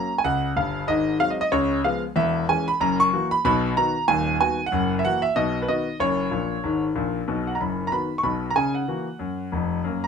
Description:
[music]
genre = jazz, stride piano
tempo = 188 BPM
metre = 4/4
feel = swing 60% on 8ths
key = B major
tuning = A4 = 440 Hz
[part]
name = clear grand piano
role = solo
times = 0.0-10.1 s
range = D#1 to C#6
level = -21 LUFS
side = equal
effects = none
[sound]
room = light reverb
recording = close, detailed microphones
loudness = -21 LUFS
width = side -6 dB against mid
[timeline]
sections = 0.0-7.3 A section; 7.3-10.1 B section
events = grand piano fill 6.3-7.3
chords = 0.0 F#; 0.9 G#7; 1.5 C#7; 2.2 C#m/E; 2.8 F#7; 3.4 B; 4.1 B/D#; 4.7 F#7; 5.4 B; 6.0 F#; 7.3 B; 8.6 F#7/C#

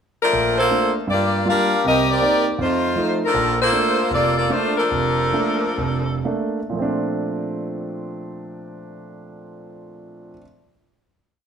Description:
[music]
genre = jazz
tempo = 112-160 BPM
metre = 4/4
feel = swing 63% on 8ths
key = Bb major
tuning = A4 = 440 Hz
[part]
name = edgy saxophone section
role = melody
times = 0.2-6.2 s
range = F3 to F5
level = -18 LUFS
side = left 1 dB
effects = none
[part]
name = warm concert grand piano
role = accompaniment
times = 0.3-10.4 s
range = F1 to F4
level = -24 LUFS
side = right 3 dB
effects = none
[sound]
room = wet large studio reverb, RT60 1.2 s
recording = none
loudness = -17 LUFS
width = side -7 dB against mid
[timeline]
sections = 0.0-0.3 pickup bar; 0.3-6.8 A section; 6.8-11.0 final chord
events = slowing down 3.3-6.8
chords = 0.3 Bbmaj7; 1.1 Gm7; 1.8 Cm7; 2.6 F7; 3.3 Bbmaj7

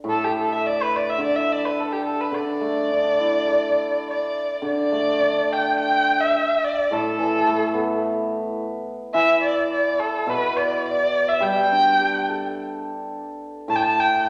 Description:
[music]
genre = chinese traditional, Chinese chamber ensemble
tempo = 106 BPM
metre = 4/4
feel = straight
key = D zhi mode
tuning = A4 = 440 Hz
[part]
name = hammered dulcimer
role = accompaniment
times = 0.0-14.3 s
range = A2 to A4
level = -28 LUFS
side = equal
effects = none
[part]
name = dark erhu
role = melody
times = 0.1-14.3 s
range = G4 to A5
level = -22 LUFS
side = equal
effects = none
[sound]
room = wet recital hall reverb, RT60 1.5 s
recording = faint mains hum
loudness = -22 LUFS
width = mono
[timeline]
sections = 0.0-4.6 A section; 4.6-14.3 B section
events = none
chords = none

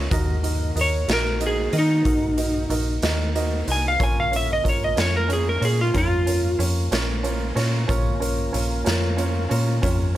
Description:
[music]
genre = slow blues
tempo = 62 BPM (dotted quarters)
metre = 12/8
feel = straight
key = Bb minor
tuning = A4 = 440 Hz
[part]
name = electric slide guitar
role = melody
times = 0.0-6.6 s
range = Eb4 to Ab5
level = -23 LUFS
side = equal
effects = none
[part]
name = warm upright piano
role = accompaniment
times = 0.0-10.2 s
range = Db4 to Eb5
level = -29 LUFS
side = right 4 dB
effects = none
[part]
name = tonewheel organ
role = sustained chords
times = 0.0-10.2 s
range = Bb3 to Bb4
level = -32 LUFS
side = left 1 dB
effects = slow rotary speaker
[part]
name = metallic FM bass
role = bass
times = 0.0-10.2 s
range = Bb1 to Eb3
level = -24 LUFS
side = equal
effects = none
[part]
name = raw garage drum kit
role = drums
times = 0.1-10.0 s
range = hi-hat, kick drum, snare drum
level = -26 LUFS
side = equal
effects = none
[sound]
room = light reverb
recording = none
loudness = -19 LUFS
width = side -14 dB against mid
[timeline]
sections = 0.0-10.2 A section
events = electric slide guitar solo 0.0-10.2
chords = 0.1 Ebm; 4.0 Bbm

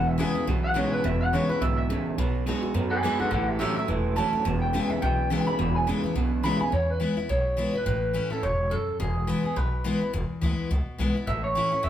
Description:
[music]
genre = rockabilly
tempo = 211 BPM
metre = 4/4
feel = swing 59% on 8ths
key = E major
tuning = A4 = 440 Hz
[part]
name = electric guitar through a small old amp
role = melody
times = 0.0-11.9 s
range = G4 to B5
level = -28 LUFS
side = right 1 dB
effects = none
[part]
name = picked steel-string acoustic guitar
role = accompaniment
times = 0.0-11.9 s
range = E2 to F#4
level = -29 LUFS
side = left 3 dB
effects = none
[part]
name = electric guitar through a small old amp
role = riff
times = 0.0-6.7 s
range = E2 to G#3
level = -29 LUFS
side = right 3 dB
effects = spring reverb
[part]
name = upright bass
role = bass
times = 0.0-11.9 s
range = E1 to F#2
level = -29 LUFS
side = equal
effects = none
[sound]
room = moderate large studio reverb, RT60 1.4 s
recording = band playing live in one room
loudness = -23 LUFS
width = side -11 dB against mid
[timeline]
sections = 0.0-6.7 A section; 6.7-11.9 B section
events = clean electric guitar solo 0.0-6.7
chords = 0.0 E; 2.2 B; 3.3 A; 4.5 E; 7.9 A; 9.0 E; 11.3 A

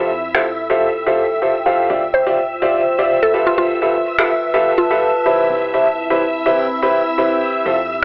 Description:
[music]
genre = piano house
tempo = 125 BPM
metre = 4/4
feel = straight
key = unclear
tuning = A4 = 440 Hz
[part]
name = string machine, violins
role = sustained chords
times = 0.0-8.0 s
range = E5 to E6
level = -22 LUFS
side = equal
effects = ensemble chorus
[part]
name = clear grand piano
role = riff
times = 0.0-7.8 s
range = E4 to F5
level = -16 LUFS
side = equal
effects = low-pass filter
[part]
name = solid FM bass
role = bass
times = 0.0-8.0 s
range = G1 to F2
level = -39 LUFS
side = equal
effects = none
[part]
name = warbly tape-like pad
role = texture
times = 0.0-8.0 s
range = C4 to B5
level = -21 LUFS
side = equal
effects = chorus, built-in reverb
[part]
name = electronic finger snaps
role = drums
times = 0.3-0.4, 4.2-4.3 s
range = none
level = -16 LUFS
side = equal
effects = overdrive
[part]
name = mallet-like synth pluck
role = melody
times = 2.1-5.3 s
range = F4 to C5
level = -18 LUFS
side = equal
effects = chorus, phaser, vintage 12-bit sampler grit, analog delay
[sound]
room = light reverb, digital ambience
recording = dry, gritty hardware recording, telephone sound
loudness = -13 LUFS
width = side -33 dB against mid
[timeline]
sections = 0.0-8.0 A section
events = none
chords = 0.0 Fmaj9; 1.9 Dm11; 3.6 G13; 5.5 Cmaj7

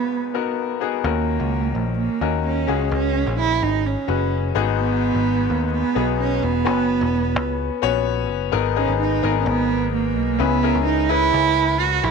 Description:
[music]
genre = piano-driven pop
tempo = 128 BPM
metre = 4/4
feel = straight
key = unclear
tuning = A4 = 438 Hz
[part]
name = dark cello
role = melody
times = 0.0-12.1 s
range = A#3 to F#4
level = -22 LUFS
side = right 10 dB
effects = none
[part]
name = bright upright piano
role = accompaniment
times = 0.0-12.1 s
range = G#1 to C#5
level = -23 LUFS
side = left 14 dB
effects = none
[part]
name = picked electric bass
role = bass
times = 1.0-12.1 s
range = E1 to D#2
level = -23 LUFS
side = left 1 dB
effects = none
[sound]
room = moderate spring reverb, RT60 1.3 s, small room ambience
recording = 1960s-style stereo with parts hard left and right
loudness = -18 LUFS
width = side -5 dB against mid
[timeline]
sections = 0.0-1.0 A section; 1.0-8.5 B section; 8.5-12.1 C section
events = none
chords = 0.0 G#m7; 1.0 D#m7; 2.7 C#sus4; 4.6 G#m7; 6.7 F#sus4; 8.5 G#madd9; 10.4 C#m7

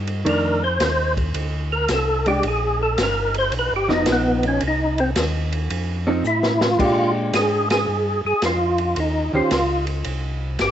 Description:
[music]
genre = soul jazz organ trio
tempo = 110 BPM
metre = 4/4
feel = swing 67% on 8ths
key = Bb mixolydian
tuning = A4 = 441 Hz
[part]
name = mellow tonewheel organ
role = bass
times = 0.0-10.7 s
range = F1 to Bb2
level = -25 LUFS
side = equal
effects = overdrive, chorus vibrato, slow rotary speaker
[part]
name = open jazz drum kit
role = drums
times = 0.1-10.7 s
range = crash cymbal, hi-hat, kick drum, ride cymbal, snare drum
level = -26 LUFS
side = equal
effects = cassette tape
[part]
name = vintage hollow-body jazz guitar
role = accompaniment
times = 0.2-9.5 s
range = Eb3 to C5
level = -22 LUFS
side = equal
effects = cassette tape
[part]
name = percussive tonewheel organ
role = melody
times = 0.3-10.7 s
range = B3 to C5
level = -21 LUFS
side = equal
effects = slow rotary speaker, overdrive, chorus vibrato, cassette tape
[sound]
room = light reverb, small room ambience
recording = home recording on cassette, nothing above 8.0 kHz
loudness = -18 LUFS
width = side -10 dB against mid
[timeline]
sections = 0.0-6.8 A section; 6.8-10.7 B section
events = tonewheel organ solo 0.0-6.8; drum fill 6.2-6.8; band accent 7.6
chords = 0.3 F13; 2.4 Gmadd9; 3.5 G7alt; 4.6 Cm; 5.7 F7; 6.8 Bb6; 9.0 Eb13

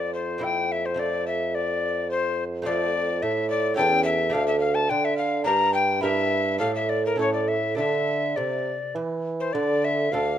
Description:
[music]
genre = classical, baroque-style sonata movement with continuo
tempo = 106 BPM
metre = 3/4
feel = rubato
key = D minor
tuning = A4 = 439 Hz
[part]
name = mellow alto recorder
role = melody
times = 0.0-10.4 s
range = Bb4 to Bb5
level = -24 LUFS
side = left 4 dB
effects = none
[part]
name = lute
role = accompaniment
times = 0.0-10.4 s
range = D2 to Bb4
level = -31 LUFS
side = right 1 dB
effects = none
[part]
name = dark bassoon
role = bass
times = 0.0-10.4 s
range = D2 to E3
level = -26 LUFS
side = right 3 dB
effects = none
[sound]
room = light reverb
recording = close, detailed microphones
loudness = -22 LUFS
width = side -10 dB against mid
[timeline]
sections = 0.0-9.5 A section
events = none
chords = 0.4 C7/F; 1.0 F; 3.8 A7/E; 4.3 D5; 5.5 Gm; 6.0 Edim/G; 6.6 D5/A; 7.2 A; 7.8 D5

